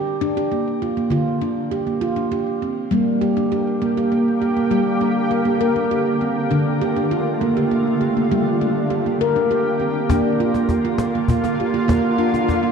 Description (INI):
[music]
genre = world meditative, meditative tuned percussion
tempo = 67 BPM (dotted quarters)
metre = 6/8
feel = straight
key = G minor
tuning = A4 = 440 Hz
[part]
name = handpan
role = arpeggios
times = 0.0-12.7 s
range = D3 to Bb4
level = -19 LUFS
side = right 1 dB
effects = ping-pong delay, shimmer reverb
[part]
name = shimmering ambient pad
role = sustained chords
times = 3.4-12.7 s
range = D3 to G4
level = -22 LUFS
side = left 1 dB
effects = chorus, built-in reverb, shimmer reverb
[part]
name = cajon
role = percussion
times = 10.1-12.6 s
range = none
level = -23 LUFS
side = left 2 dB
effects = none
[sound]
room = wet recital hall reverb, RT60 1.5 s, small room reverb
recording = dark, warm production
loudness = -17 LUFS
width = side -6 dB against mid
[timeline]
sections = 0.0-10.1 A section; 10.1-12.7 B section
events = none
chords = 0.0 Dm; 2.9 Gm; 6.5 Dm; 8.3 Gm; 10.1 Bb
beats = 0.20 | 1.11 2.01 | 2.91 3.81 | 4.71 5.61 | 6.51 7.41 | 8.31 9.20 | 10.10 10.99 | 11.89